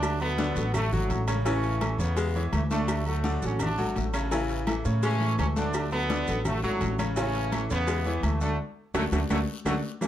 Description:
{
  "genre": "latin, salsa",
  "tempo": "168 BPM",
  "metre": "4/4",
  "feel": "straight",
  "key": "unclear",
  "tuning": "A4 = 442 Hz",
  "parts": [
    { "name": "brilliant trombone section", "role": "melody", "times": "0.0-9.7 s", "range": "A2 to D4", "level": "-31 LUFS", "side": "equal", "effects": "plate reverb" },
    { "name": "breathy baritone saxophone", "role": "second line", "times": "0.0-9.7 s", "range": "D3 to A3", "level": "-34 LUFS", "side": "left 4 dB", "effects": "none" },
    { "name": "bright concert grand piano", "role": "accompaniment", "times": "0.0-10.1 s", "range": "C#3 to D5", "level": "-33 LUFS", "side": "equal", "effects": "none" },
    { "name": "upright bass", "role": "bass", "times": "0.0-9.8 s", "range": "G#1 to A2", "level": "-28 LUFS", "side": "equal", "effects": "none" },
    { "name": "agogo bells and timbales", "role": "percussion", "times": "0.0-10.1 s", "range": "none", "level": "-38 LUFS", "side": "right 3 dB", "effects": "none" },
    { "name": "claves", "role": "percussion", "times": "0.0-9.7 s", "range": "none", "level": "-44 LUFS", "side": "left 2 dB", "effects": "none" },
    { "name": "congas", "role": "percussion", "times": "0.0-10.1 s", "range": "none", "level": "-35 LUFS", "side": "left 4 dB", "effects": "none" },
    { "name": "cowbell", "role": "percussion", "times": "0.0-10.1 s", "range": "none", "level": "-38 LUFS", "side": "left 2 dB", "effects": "none" },
    { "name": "guiro", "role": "percussion", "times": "0.0-10.1 s", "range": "none", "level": "-47 LUFS", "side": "left 6 dB", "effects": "none" },
    { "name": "maracas", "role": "percussion", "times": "0.0-10.1 s", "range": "none", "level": "-46 LUFS", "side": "right 9 dB", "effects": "none" }
  ],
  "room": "moderate studio reverb, RT60 0.5 s",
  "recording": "dark, warm production",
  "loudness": "-25 LUFS",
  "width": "side -11 dB against mid",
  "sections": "0.0-10.0 A section",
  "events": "drum fill 8.6-10.0; band accent 8.6-10.0",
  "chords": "0.0 D; 1.5 A; 2.9 D; 4.3 A; 5.7 D; 7.2 A; 8.6 D"
}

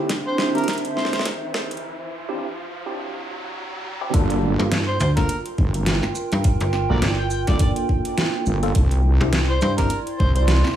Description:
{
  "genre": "glitch hop",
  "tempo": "104 BPM",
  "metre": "4/4",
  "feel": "swing 57% on 16ths",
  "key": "G dorian",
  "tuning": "A4 = 440 Hz",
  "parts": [
    { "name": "warm analog pad", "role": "sustained chords", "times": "0.0-1.8 s", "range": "D3 to G4", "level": "-31 LUFS", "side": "left 1 dB", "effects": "chorus, sidechain pumping" },
    { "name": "tine electric piano", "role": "stabs", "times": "0.0-9.9 s", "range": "Bb3 to A4", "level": "-28 LUFS", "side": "equal", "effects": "overdrive, medium stereo tremolo, sidechain pumping, low-pass filter, dub echo" },
    { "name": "riser", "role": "sound effects", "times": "0.0-4.1 s", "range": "none", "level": "-33 LUFS", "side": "right 1 dB", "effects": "none" },
    { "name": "warbly tape-like pad", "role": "texture", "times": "0.0-10.8 s", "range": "Bb3 to C6", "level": "-28 LUFS", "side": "right 2 dB", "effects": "chorus, built-in reverb, sidechain pumping" },
    { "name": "dubstep drum kit", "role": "drums", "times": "0.1-10.8 s", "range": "hi-hat, shaker, snare drum", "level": "-25 LUFS", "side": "right 1 dB", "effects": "none" },
    { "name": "electronic kick drum", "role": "drums", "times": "0.1-10.3 s", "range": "none", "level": "-20 LUFS", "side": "equal", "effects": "high-pass filter on kick, high-pass filter on room" },
    { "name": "overdriven harmonica", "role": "melody", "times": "0.3-1.2, 4.9-10.4 s", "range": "F#4 to G5", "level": "-30 LUFS", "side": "equal", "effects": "dub echo" },
    { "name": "wobble bass", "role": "bass", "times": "4.1-10.6 s", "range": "G1 to C2", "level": "-19 LUFS", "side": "equal", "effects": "chorus, tube saturation" },
    { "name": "slap-like FM bass", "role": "bass", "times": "4.6-9.9 s", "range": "G1 to G2", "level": "-21 LUFS", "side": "equal", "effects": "none" }
  ],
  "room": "light reverb",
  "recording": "high-pass filter, studio reverb",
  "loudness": "-19 LUFS",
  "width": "side -11 dB against mid",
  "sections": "0.0-4.1 A section; 4.1-10.8 B section",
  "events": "build-up 0.0-4.1; drum fill 0.0-1.8; riser 0.0-4.1; filter sweep on harmonica 0.0-4.1; break 1.8-4.1; drop 4.1-10.8",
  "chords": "0.0 Cadd9; 4.1 Gm7; 8.8 Cadd9"
}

